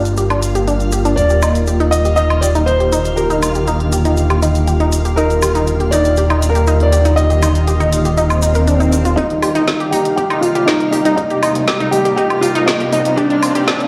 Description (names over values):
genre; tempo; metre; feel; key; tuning
progressive house; 120 BPM; 4/4; straight; Eb major; A4 = 439 Hz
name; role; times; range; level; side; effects
shimmering ambient pad; sustained chords; 0.0-13.9 s; C3 to D5; -24 LUFS; equal; chorus, built-in reverb, sidechain pumping
fat analog bass; bass; 0.0-13.9 s; Eb1 to C2; -19 LUFS; equal; sidechain pumping, high-pass filter
backwards swelling texture; texture; 0.0-13.9 s; F4 to F5; -32 LUFS; equal; built-in reverb, sidechain pumping
deep house drum kit; drums; 0.1-13.9 s; hi-hat, snare drum, woodblock; -24 LUFS; equal; sidechain pumping on hats, studio ambience, sidechain pumping on cymbals, sidechain pumping on perc
egg shaker; percussion; 0.1-9.2 s; none; -33 LUFS; equal; none
unison pluck; arpeggios; 0.2-13.7 s; Eb3 to Bb4; -21 LUFS; equal; sidechain pumping, dub echo
clear grand piano; melody; 1.2-13.9 s; D4 to Eb5; -19 LUFS; equal; low-pass filter, dub echo
swell and riser; sound effects; 8.4-13.9 s; none; -27 LUFS; equal; none
electronic kick drum; drums; 9.2-13.8 s; none; -28 LUFS; equal; high-pass filter on kick, studio ambience
room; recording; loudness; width
moderate digital room reverb, RT60 1.3 s, digital ambience; played on a big sound system in a bare room, large studio reverb, high-pass filter; -14 LUFS; mono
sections
0.0-9.2 A section; 9.2-13.9 B section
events
filter sweep on synth pluck 0.0-9.2; filter sweep on ambient pad 0.0-9.2; swell 8.4-9.2; build-up 9.2-13.9; filter sweep on grand piano 9.2-13.9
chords
0.0 Gm7; 1.2 Ebmaj7; 9.2 Cm7; 13.2 Gm7